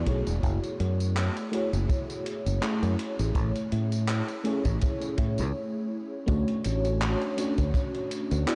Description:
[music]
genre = vaporwave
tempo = 82 BPM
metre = 4/4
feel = swing 55% on 16ths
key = unclear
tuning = A4 = 439 Hz
[part]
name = FM electric piano with soft pad layer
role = accompaniment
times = 0.0-8.6 s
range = A3 to D5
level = -32 LUFS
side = equal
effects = analog chorus, delay
[part]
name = fingered electric bass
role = bass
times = 0.0-8.4 s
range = E1 to A2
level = -29 LUFS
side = equal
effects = tube saturation
[part]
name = gated 80s digital drum machine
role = drums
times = 0.1-8.6 s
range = handclaps, hi-hat, tambourine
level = -39 LUFS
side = equal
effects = gated reverb, overdrive, vintage 12-bit sampler grit
[part]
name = kick drum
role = drums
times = 0.1-7.9 s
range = none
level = -31 LUFS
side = equal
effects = vintage 12-bit sampler grit
[sound]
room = moderate huge ambient reverb, RT60 7.7 s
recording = dreamy mix soaked in reverb, cassette tape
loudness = -28 LUFS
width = mono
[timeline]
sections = 0.0-6.3 A section; 6.3-8.6 B section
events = stop 5.6-6.3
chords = 0.4 F#m9; 3.0 Amaj7; 6.3 Dmaj7

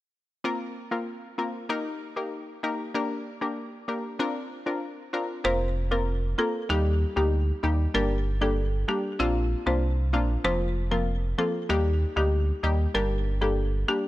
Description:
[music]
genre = dancehall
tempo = 96 BPM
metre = 4/4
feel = straight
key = unclear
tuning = A4 = 439 Hz
[part]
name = analog pluck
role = accompaniment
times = 0.4-14.0 s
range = F3 to Bb4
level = -29 LUFS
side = left 2 dB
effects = chorus
[part]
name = folk marimba with medium hard mallets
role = melody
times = 5.4-14.1 s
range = F4 to C5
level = -29 LUFS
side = equal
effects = none
[part]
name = sub bass with octave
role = bass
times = 5.4-13.8 s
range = F1 to Eb2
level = -26 LUFS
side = equal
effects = none
[sound]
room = little or no reverb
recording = none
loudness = -25 LUFS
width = side -16 dB against mid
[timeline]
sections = 0.4-5.4 A section; 5.4-14.1 B section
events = none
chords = 0.4 Fsus4; 1.7 Eb; 2.9 Gm; 4.2 Bbadd9; 5.4 Fsus4; 6.7 Eb; 7.9 Gm; 9.2 Bbadd9; 10.4 Fsus4; 11.7 Eb; 12.9 Gm

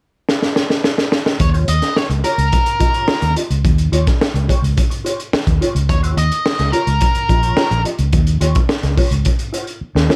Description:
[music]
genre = funk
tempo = 107 BPM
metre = 4/4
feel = straight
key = Eb mixolydian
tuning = A4 = 439 Hz
[part]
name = crunchy breakbeat drum kit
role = drums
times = 0.3-10.2 s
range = hi-hat, kick drum, snare drum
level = -19 LUFS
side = equal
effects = none
[part]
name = octave-fuzz lead guitar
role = melody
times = 1.4-7.8 s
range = Bb4 to Eb5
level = -21 LUFS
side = equal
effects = distortion
[part]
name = mellow electric guitar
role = accompaniment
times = 1.4-10.2 s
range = F4 to Eb5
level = -26 LUFS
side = equal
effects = wah, lush chorus
[part]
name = vintage muted fingered electric bass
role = bass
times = 1.4-10.1 s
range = Bb1 to Eb2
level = -19 LUFS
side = equal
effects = none
[sound]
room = light reverb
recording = none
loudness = -16 LUFS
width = mono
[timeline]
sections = 0.0-1.4 A section; 1.4-10.2 B section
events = drum fill 0.3-1.4, 9.8-10.2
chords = 0.0 N.C.; 1.4 Eb9

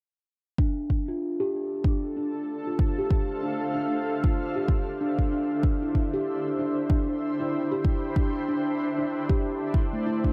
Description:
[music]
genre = organic downtempo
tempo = 95 BPM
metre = 4/4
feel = swing 59% on 16ths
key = D dorian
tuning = A4 = 441 Hz
[part]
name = granular cloud pad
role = sustained chords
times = 2.1-10.3 s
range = D4 to B5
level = -35 LUFS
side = equal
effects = built-in reverb, sidechain pumping
[part]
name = steel tongue drum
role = arpeggios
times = 0.6-10.3 s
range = A3 to G4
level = -30 LUFS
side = equal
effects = low-pass filter, analog delay
[part]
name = electronic kick drum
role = drums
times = 0.6-10.3 s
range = none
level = -27 LUFS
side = equal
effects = none
[sound]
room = light reverb, studio reverb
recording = echo-heavy mix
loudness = -27 LUFS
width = mono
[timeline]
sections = 0.6-10.3 A section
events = none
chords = 0.6 Dm7; 5.6 Cmaj7/D

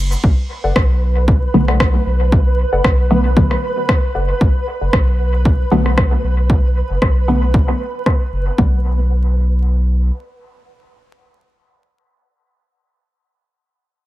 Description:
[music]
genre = dub techno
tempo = 115 BPM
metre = 4/4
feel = swing 55% on 16ths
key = B minor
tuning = A4 = 443 Hz
[part]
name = warm sub bass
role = bass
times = 0.0-10.1 s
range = F#1 to B1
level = -16 LUFS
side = equal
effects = sidechain pumping
[part]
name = electronic shaker and rim click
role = drums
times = 0.1-8.2 s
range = none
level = -22 LUFS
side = left 1 dB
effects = low-pass filter on perc, low-pass filter on hats, low-pass filter on cymbals, low-pass filter on snare, low-pass filter on room, dub echo
[part]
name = electronic kick drum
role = drums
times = 0.2-8.7 s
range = none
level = -14 LUFS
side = equal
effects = none
[part]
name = flickering grainy texture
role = texture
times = 1.0-8.6 s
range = B4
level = -25 LUFS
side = right 2 dB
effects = built-in reverb, sidechain pumping
[part]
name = filtered dub chord stab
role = riff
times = 0.6-4.9, 8.6-12.7 s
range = A4 to F#5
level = -25 LUFS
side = left 2 dB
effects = chorus, sidechain pumping, dub echo
[part]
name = filtered dub chord stab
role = stabs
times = 1.5-12.7 s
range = D3 to B3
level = -19 LUFS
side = left 1 dB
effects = chorus, phaser, sidechain pumping, dub echo
[sound]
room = light reverb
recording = vinyl crackle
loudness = -13 LUFS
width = side -16 dB against mid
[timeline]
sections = 0.2-8.6 A section; 8.6-12.8 B section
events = filter sweep on drum 0.2-8.6; filter sweep on synth stab 0.2-8.6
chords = 0.2 Bm7

